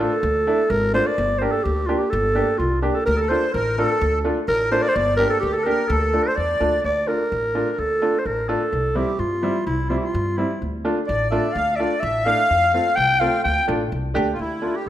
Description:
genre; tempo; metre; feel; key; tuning
klezmer; 127 BPM; 2/4; straight; D minor; A4 = 440 Hz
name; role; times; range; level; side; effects
growling clarinet; melody; 0.0-14.9 s; E4 to G5; -21 LUFS; equal; none
clear upright piano; accompaniment; 0.0-14.7 s; G3 to G4; -25 LUFS; equal; none
upright bass; bass; 0.0-14.9 s; G1 to G2; -26 LUFS; equal; none
accordion; second line; 3.1-6.8, 11.1-14.9 s; E4 to G5; -26 LUFS; equal; light tremolo tuning
room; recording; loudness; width
wet recital hall reverb, RT60 1.4 s; none; -18 LUFS; side -12 dB against mid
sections
0.0-6.8 A section; 6.8-14.4 B section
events
clarinet solo 6.8-14.4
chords
0.0 Dm; 1.2 Gm; 3.1 Dm; 5.0 Gm; 5.9 Dm; 8.7 C; 10.6 Dm; 12.5 F; 13.4 Dm

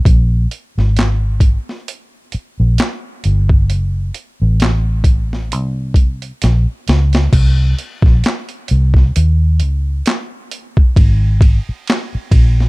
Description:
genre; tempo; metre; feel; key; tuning
R&B, neo-soul; 66 BPM; 4/4; swing 56% on 16ths; unclear; A4 = 440 Hz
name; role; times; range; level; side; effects
vintage muted fingered electric bass; bass; 0.1-12.7 s; Gb1 to Eb2; -13 LUFS; equal; none
boom bap sampler-style drum kit; drums; 0.1-12.7 s; crash cymbal, handclaps, hi-hat, kick drum, ride cymbal, snare drum; -13 LUFS; equal; none
room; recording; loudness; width
little or no reverb; dark, warm production; -12 LUFS; side -24 dB against mid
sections
0.0-7.3 A section; 7.3-11.0 B section; 11.0-12.7 C section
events
drum fill 6.4-7.3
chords
none

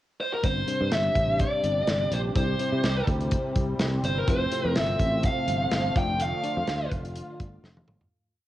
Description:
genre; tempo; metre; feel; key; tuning
1980s-style pop; 125 BPM; 4/4; swing 55% on 16ths; unclear; A4 = 441 Hz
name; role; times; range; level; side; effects
bluesy overdriven lead guitar; melody; 0.2-6.9 s; Bb4 to G5; -27 LUFS; equal; distortion, cassette tape
mellow FM electric piano; accompaniment; 0.4-8.1 s; G3 to D5; -36 LUFS; left 6 dB; chorus, cassette tape
sweeping resonant pad; sustained chords; 0.4-8.1 s; C3 to G4; -32 LUFS; equal; wide subtle chorus, cassette tape
sustaining fretless electric bass; bass; 0.4-8.1 s; F1 to C3; -29 LUFS; equal; none
modern studio drum kit; drums; 0.4-8.1 s; hi-hat, kick drum, snare drum, toms; -29 LUFS; equal; cassette tape
room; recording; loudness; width
light reverb, studio reverb; home recording on cassette; -23 LUFS; side -14 dB against mid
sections
0.0-0.4 pickup bar; 0.4-8.1 pre-chorus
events
fade-out 6.2-8.1; drum fill 7.6-8.1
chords
0.4 Gsus4; 2.4 C; 4.3 Fmaj7; 6.0 Dm/F

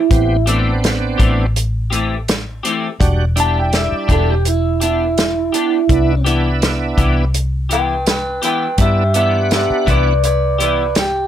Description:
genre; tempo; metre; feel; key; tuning
straight-eighth soul blues; 83 BPM; 4/4; swing 54% on 16ths; unclear; A4 = 441 Hz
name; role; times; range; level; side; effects
electric guitar through a small old amp; melody; 0.0-11.3 s; E4 to A5; -17 LUFS; right 2 dB; phaser
bright tonewheel organ; accompaniment; 0.1-10.1 s; G3 to F#5; -21 LUFS; right 3 dB; overdrive, chorus vibrato, slow rotary speaker
vintage muted fingered electric bass; bass; 0.1-11.3 s; E1 to G2; -17 LUFS; equal; none
warm soul drum kit; drums; 0.1-11.1 s; hi-hat, kick drum, snare drum; -18 LUFS; equal; none
clean electric guitar; stabs; 0.5-10.8 s; E3 to G4; -20 LUFS; left 4 dB; analog chorus
room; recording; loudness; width
light reverb; none; -13 LUFS; side -10 dB against mid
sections
0.0-11.3 A section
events
none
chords
0.0 Am7; 3.0 Em7; 5.9 Cmaj7

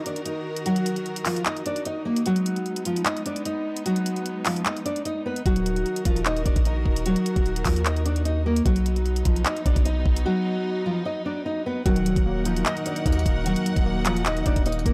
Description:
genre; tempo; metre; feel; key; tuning
hip hop, trap; 150 BPM; 4/4; half-time; Eb harmonic minor; A4 = 443 Hz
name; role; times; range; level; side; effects
warm studio string section; sustained chords; 0.0-14.9 s; Eb3 to Gb5; -36 LUFS; equal; none
nylon-string guitar; melody; 0.1-14.9 s; F3 to Eb5; -28 LUFS; equal; analog delay
trap drum kit; drums; 0.1-14.9 s; handclaps, hi-hat, kick drum; -27 LUFS; equal; none
long sustained 808-style bass; bass; 5.5-14.9 s; Eb1 to Eb2; -28 LUFS; equal; none
warbly lo-fi synth keys; accompaniment; 11.9-14.9 s; Eb3 to Eb5; -31 LUFS; equal; chorus
room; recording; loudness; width
digital ambience; dry, gritty hardware recording; -24 LUFS; mono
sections
0.0-11.9 A section; 11.9-14.9 B section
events
break 0.0-5.5, 10.3-11.9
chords
0.0 Ebm; 2.3 Abm; 5.5 Ebm; 8.7 B; 11.9 Ebm

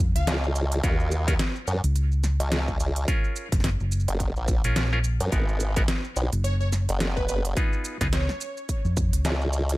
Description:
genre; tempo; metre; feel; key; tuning
glitch hop; 107 BPM; 4/4; swing 58% on 16ths; G# dorian; A4 = 440 Hz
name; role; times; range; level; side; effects
hollow-body short-scale fingered electric bass; bass; 0.0-9.2 s; F#1 to E#2; -24 LUFS; equal; tube saturation
plucky unison lead; melody; 0.2-0.6, 6.4-8.9 s; B4 to E#5; -35 LUFS; equal; ping-pong delay
dubstep drum kit; drums; 0.2-9.8 s; hi-hat, shaker, snare drum; -30 LUFS; equal; none
formant-sweep wobble bass; bass; 0.3-9.8 s; F#1 to F#2; -25 LUFS; equal; chorus, tube saturation
clav; stabs; 0.8-8.1 s; B3 to A#4; -32 LUFS; equal; sidechain pumping, ping-pong delay
electronic kick drum; drums; 0.8-9.1 s; none; -26 LUFS; equal; none
room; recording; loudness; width
little or no reverb; none; -22 LUFS; side -19 dB against mid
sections
0.0-9.8 A section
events
none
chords
0.0 C#; 0.8 D#m7; 3.1 F#maj7; 5.3 G#m7; 7.6 C#7

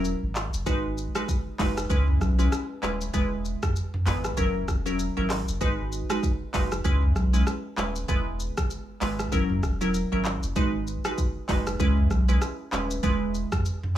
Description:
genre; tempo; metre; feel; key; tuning
afrobeats; 97 BPM; 4/4; swing 58% on 16ths; G# minor; A4 = 441 Hz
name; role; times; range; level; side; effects
glassy wavetable pluck; accompaniment; 0.0-13.9 s; F#3 to B4; -28 LUFS; right 1 dB; chorus
warm sub bass; bass; 0.0-13.4 s; D#1 to C#2; -27 LUFS; equal; none
afro-pop drum kit; drums; 0.0-14.0 s; handclaps, hi-hat, kick drum, rim click, shaker, toms; -28 LUFS; equal; none
room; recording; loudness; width
little or no reverb; small room ambience; -24 LUFS; side -12 dB against mid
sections
0.0-14.0 A section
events
none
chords
0.0 F#7(no3); 0.7 G#m7; 1.9 C#m7; 3.1 E; 4.4 F#7; 5.6 G#m7; 6.8 C#m7; 8.1 E; 9.3 F#7; 10.6 G#m7; 11.8 C#m7; 13.0 E

